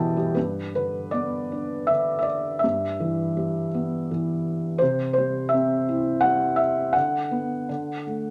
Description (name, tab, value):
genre	classical, lyrical solo piano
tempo	82 BPM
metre	3/4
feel	uneven beats, rubato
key	G major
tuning	A4 = 440 Hz
part	felt-muted upright piano	solo	0.0-8.3 s	E2 to A5	-24 LUFS	equal	none
room	moderate studio reverb, RT60 0.8 s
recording	none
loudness	-25 LUFS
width	mono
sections	0.4-8.3 A section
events	felt piano fill 0.0-0.4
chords	0.4 G; 2.6 Em/G; 4.8 C; 7.0 D6; 7.7 D